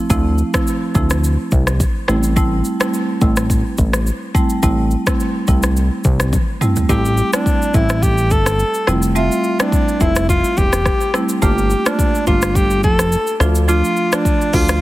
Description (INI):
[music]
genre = afrobeats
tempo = 106 BPM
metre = 4/4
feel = swing 55% on 16ths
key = unclear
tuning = A4 = 440 Hz
[part]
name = marimba with medium mallets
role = accompaniment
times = 0.0-14.8 s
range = F3 to E5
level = -20 LUFS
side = right 2 dB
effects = none
[part]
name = fat analog bass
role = bass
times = 0.1-14.8 s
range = E1 to D2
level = -17 LUFS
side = equal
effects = none
[part]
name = deep house drum kit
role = drums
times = 0.1-14.8 s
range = hi-hat, kick drum, rim click, shaker, toms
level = -18 LUFS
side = equal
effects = none
[part]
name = breathy alto saxophone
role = melody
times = 6.9-14.8 s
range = D4 to A4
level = -18 LUFS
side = equal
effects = ping-pong delay
[sound]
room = digital ambience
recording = heavily compressed radio sound, multiband compression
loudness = -14 LUFS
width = side -16 dB against mid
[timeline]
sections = 0.0-6.9 A section; 6.9-14.8 B section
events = drum fill 6.3-6.9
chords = 0.0 Dm7; 2.1 Am7; 8.9 Fmaj7; 11.4 Gm7; 13.4 Dm